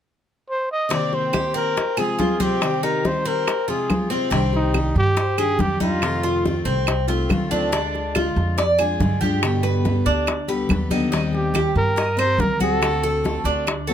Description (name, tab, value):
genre	latin, Cuban son and guajira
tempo	141 BPM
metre	4/4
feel	straight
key	C minor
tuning	A4 = 440 Hz
part	breathy trumpet	melody	0.5-6.6, 11.3-13.4 s	Eb4 to Eb5	-23 LUFS	right 1 dB	none
part	picked steel-string acoustic guitar	accompaniment	0.9-13.9 s	B2 to G4	-26 LUFS	left 4 dB	none
part	Cuban tres	arpeggios	0.9-13.9 s	C4 to Eb5	-24 LUFS	equal	none
part	bongos	percussion	0.9-13.9 s	none	-28 LUFS	left 4 dB	none
part	congas	percussion	0.9-13.9 s	none	-26 LUFS	equal	none
part	claves	percussion	1.3-13.9 s	none	-26 LUFS	right 7 dB	none
part	upright bass	bass	4.3-13.9 s	C2 to G2	-24 LUFS	right 1 dB	none
room	little or no reverb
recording	close, detailed microphones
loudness	-18 LUFS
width	side -9 dB against mid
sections	0.9-4.3 A section; 4.3-13.9 B section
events	none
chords	0.0 N.C.; 0.9 Cm7; 1.8 Fm; 2.6 Cm; 3.5 Fm; 4.3 Cmadd9; 6.0 F7; 7.7 Ddim; 9.4 G; 11.1 Eb6; 12.8 D7